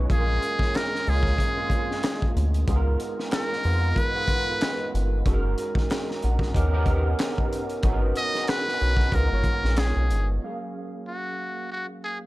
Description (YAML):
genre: R&B, neo-soul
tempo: 93 BPM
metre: 4/4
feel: swing 56% on 16ths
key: F# major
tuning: A4 = 440 Hz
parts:
  - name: overdriven tine electric piano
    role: accompaniment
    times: 0.0-12.3 s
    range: F#3 to A#5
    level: -30 LUFS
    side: right 2 dB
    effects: ensemble chorus
  - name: rubbery square bass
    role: bass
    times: 0.0-10.4 s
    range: F#1 to E#2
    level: -23 LUFS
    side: equal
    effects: none
  - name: trumpet with metal mute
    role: melody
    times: 0.1-12.2 s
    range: F#4 to D#5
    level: -28 LUFS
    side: equal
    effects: none
  - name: crunchy breakbeat drum kit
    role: drums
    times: 0.1-10.3 s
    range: handclaps, hi-hat, kick drum, snare drum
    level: -27 LUFS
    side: equal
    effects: none
room: little or no reverb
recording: none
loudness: -22 LUFS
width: side -18 dB against mid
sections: 0.1-10.4 A section; 10.4-12.3 B section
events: none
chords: 0.1 A#m7; 2.7 C#13 (rootless); 5.3 F#69; 6.5 D#7b13; 7.8 G#m11; 9.1 C#13; 10.4 F#maj9